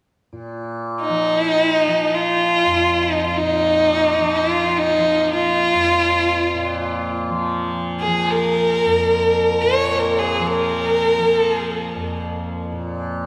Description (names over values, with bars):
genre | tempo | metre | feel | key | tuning
indian classical | free time | none | none | unclear | A4 = 435 Hz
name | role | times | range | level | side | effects
tanpura | drone | 0.3-13.3 s | F2 to F3 | -27 LUFS | equal | none
rich violin | melody | 1.0-12.2 s | Eb4 to Db5 | -19 LUFS | equal | tape echo
room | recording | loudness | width
wet lush hall reverb, RT60 2.8 s | dreamy mix soaked in reverb | -19 LUFS | mono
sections
0.3-13.3 A section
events
none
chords
none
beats
free time